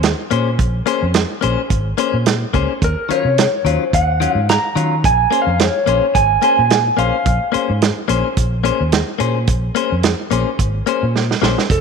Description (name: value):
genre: straight-eighth soul blues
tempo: 108 BPM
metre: 4/4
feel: swing 55% on 16ths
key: Bb minor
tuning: A4 = 441 Hz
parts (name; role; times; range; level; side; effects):
- vintage muted fingered electric bass; bass; 0.0-11.8 s; F1 to Eb3; -19 LUFS; equal; none
- warm soul drum kit; drums; 0.0-11.8 s; hi-hat, kick drum, snare drum; -18 LUFS; right 5 dB; none
- direct-recorded clean electric guitar; stabs; 0.3-11.6 s; Eb3 to C5; -20 LUFS; left 10 dB; spring reverb
- electric guitar through a small old amp; melody; 2.8-7.5, 11.7-11.8 s; A4 to Bb5; -16 LUFS; right 1 dB; spring reverb
room: moderate echo chamber reverb, RT60 1.9 s, studio reverb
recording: 1960s-style stereo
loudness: -14 LUFS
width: side -5 dB against mid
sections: 0.0-11.8 A section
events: drum fill 11.1-11.7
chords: 0.0 Bbm9; 2.8 Ebm9; 5.0 Bbm9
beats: 0.04 | 0.59 1.15 1.71 2.26 | 2.82 3.37 3.93 4.48 | 5.04 5.60 6.15 6.71 | 7.26 7.82 8.37 8.93 | 9.48 10.04 10.59 11.15 | 11.70